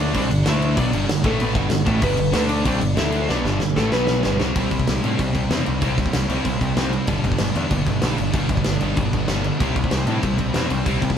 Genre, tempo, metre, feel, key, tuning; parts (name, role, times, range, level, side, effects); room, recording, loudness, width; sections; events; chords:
punk rock; 190 BPM; 4/4; straight; A4 = 440 Hz
lightly driven lead guitar; melody; 0.0-4.4 s; A3 to E5; -26 LUFS; right 1 dB
cranked stack guitar; riff; 0.0-11.2 s; G2 to E4; -28 LUFS; equal; overdrive
crunchy overdriven guitar; riff; 0.0-11.2 s; G2 to D4; -26 LUFS; left 8 dB
sludgy distorted guitar; riff; 0.0-11.2 s; G2 to D4; -26 LUFS; right 8 dB; overdrive
growling picked electric bass; bass; 0.0-11.1 s; G1 to A2; -25 LUFS; equal; overdrive
big rock drum kit; drums; 0.1-11.2 s; crash cymbal, kick drum, snare drum; -23 LUFS; equal
moderate studio ambience, RT60 0.5 s; band playing live in one room; -18 LUFS; side -8 dB against mid
0.0-4.6 A section; 4.6-11.2 B section
drum fill 3.3-4.6
0.1 G5; 0.4 D5; 0.8 G; 1.2 A5; 1.6 G; 2.3 D5; 2.7 G5; 3.0 D5; 3.3 G; 3.9 B5; 4.2 G; 4.6 C; 7.1 G; 9.6 C